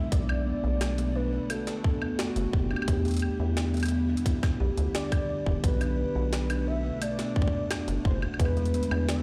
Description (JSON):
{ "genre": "IDM", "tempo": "87 BPM", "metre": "4/4", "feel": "straight", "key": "B minor", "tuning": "A4 = 439 Hz", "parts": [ { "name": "warm velvety synth lead", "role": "melody", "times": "0.0-9.2 s", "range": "F#4 to E5", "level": "-38 LUFS", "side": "equal", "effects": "chorus, tape echo" }, { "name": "glassy FM pad", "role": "sustained chords", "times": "0.0-9.2 s", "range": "B2 to E4", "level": "-40 LUFS", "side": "equal", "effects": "ensemble chorus, built-in reverb, vintage 12-bit sampler grit" }, { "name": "buzzing kalimba", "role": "arpeggios", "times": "0.0-9.1 s", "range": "G#3 to D5", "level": "-35 LUFS", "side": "equal", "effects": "low-pass filter, digital delay" }, { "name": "deep acid bass", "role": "bass", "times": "0.1-9.2 s", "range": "E1 to E2", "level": "-30 LUFS", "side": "equal", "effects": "none" }, { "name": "electronic kick drum", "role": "drums", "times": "0.1-8.5 s", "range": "none", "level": "-29 LUFS", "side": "equal", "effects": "overdrive" }, { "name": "jungle sampler-style drum kit", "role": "drums", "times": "0.1-9.2 s", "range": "hi-hat, snare drum, woodblock", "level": "-38 LUFS", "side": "equal", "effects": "none" } ], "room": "light reverb", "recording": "played on a big sound system in a bare room, large studio reverb", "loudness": "-28 LUFS", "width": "mono", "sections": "0.0-9.2 A section", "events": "none", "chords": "0.1 Bm7; 2.9 Em7; 5.6 Bm7; 8.4 E7" }